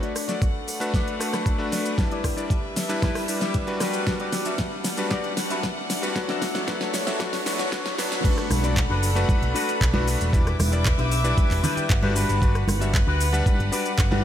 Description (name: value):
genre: nu-disco, nu disco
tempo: 115 BPM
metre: 4/4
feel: straight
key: B minor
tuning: A4 = 440 Hz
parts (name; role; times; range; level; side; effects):
- bright electric grand piano; accompaniment; 0.0-14.2 s; F#3 to F#5; -29 LUFS; left 1 dB; analog delay
- rich chamber string section; sustained chords; 0.0-14.2 s; G3 to D6; -31 LUFS; left 1 dB; sidechain pumping
- electric guitar with an envelope filter; riff; 0.0-14.2 s; D4 to G5; -32 LUFS; left 4 dB; wide subtle chorus, low-pass filter, analog delay
- pop drum kit; drums; 0.0-14.1 s; crash cymbal, handclaps, hi-hat, rim click, shaker, snare drum; -29 LUFS; equal; none
- electronic kick drum; drums; 0.4-14.1 s; none; -23 LUFS; equal; overdrive
- picked electric bass with an envelope filter; bass; 8.5-14.2 s; E1 to D2; -24 LUFS; equal; tube saturation
- congas; percussion; 8.5-14.2 s; none; -30 LUFS; right 1 dB; none
room: moderate lush hall reverb, RT60 2.9 s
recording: dreamy mix soaked in reverb, high-pass filter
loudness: -21 LUFS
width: side -10 dB against mid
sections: 0.0-8.2 A section; 8.2-14.2 B section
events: build-up 0.0-8.2; drum fill 0.0-8.2; filter sweep on clean electric guitar 0.0-8.2; filter sweep 0.0-8.2; drop 8.2-14.2; clean electric guitar fill 10.9-12.4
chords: 0.0 Bm7; 2.0 Gmaj7; 6.2 Dmaj7; 8.2 Bm7; 10.3 Em7; 12.2 Gmaj7